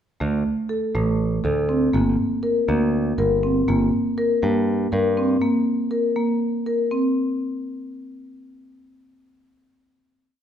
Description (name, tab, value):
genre	contemporary instrumental, chamber music in an uneven meter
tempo	242 BPM (eighths)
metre	7/8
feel	straight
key	unclear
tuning	A4 = 440 Hz
part	marimba with medium mallets	arpeggios	0.2-7.0 s	A3 to Bb4	-20 LUFS	equal	none
part	modern bright picked electric bass	bass	0.2-5.4 s	G1 to G2	-24 LUFS	right 1 dB	none
room	moderate recital hall reverb, RT60 1.3 s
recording	minimal, uncompressed stereo recording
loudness	-19 LUFS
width	side -9 dB against mid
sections	0.2-7.2 A section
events	none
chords	0.2 D5; 1.9 Gm; 3.7 N.C.